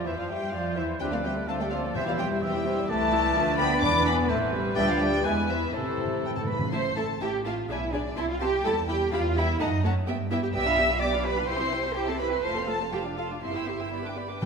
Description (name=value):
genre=quick classical-period movement for symphony orchestra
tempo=126 BPM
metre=2/4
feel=straight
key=A minor, C major from 10.6 s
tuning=A4 = 440 Hz
part: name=clear oboe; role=second line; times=0.0-6.5 s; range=A4 to E5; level=-34 LUFS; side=right 2 dB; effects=none
part: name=mellow silver concert flute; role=second line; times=0.0-6.2 s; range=A4 to B5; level=-32 LUFS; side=left 1 dB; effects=none
part: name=warm chamber violin section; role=second line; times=0.0-14.5 s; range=B3 to E6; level=-34 LUFS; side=left 2 dB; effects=none
part: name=rich studio viola section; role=accompaniment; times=0.0-14.4 s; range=E3 to C5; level=-33 LUFS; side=right 1 dB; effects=none
part: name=dark chamber cello section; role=bass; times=0.0-14.5 s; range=G2 to E5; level=-30 LUFS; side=right 3 dB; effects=none
part: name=warm chamber double bass section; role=bass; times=0.0-14.5 s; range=F1 to G2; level=-33 LUFS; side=right 2 dB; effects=none
part: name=warm chamber violin section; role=melody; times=0.1-14.5 s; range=C5 to E6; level=-32 LUFS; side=left 4 dB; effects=none
part: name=mellow French horn section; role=sustained chords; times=0.1-6.2 s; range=C3 to D4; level=-32 LUFS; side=left 3 dB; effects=none
part: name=timpani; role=percussion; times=2.0-6.7, 14.4-14.5 s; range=E2 to C3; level=-35 LUFS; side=left 1 dB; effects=none
room=wet scoring stage reverb, RT60 1.7 s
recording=minimal, uncompressed stereo recording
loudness=-24 LUFS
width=side -5 dB against mid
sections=0.0-6.7 A section; 6.7-14.4 B section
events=timpani fill 5.7-6.7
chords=0.1 Dm11; 1.0 Dm7; 2.0 C/E; 2.9 Am/C; 3.4 Bdim/D; 3.8 E7; 4.3 Am; 4.8 Dm; 5.2 E; 5.7 Am; 7.7 G#dim/B; 8.2 Am/C (rootless); 8.7 Em; 9.6 D#dim/F#; 10.1 Em/G; 10.6 G7/B; 11.5 C; 12.4 F; 12.9 Dm/F; 13.4 C/G; 13.9 G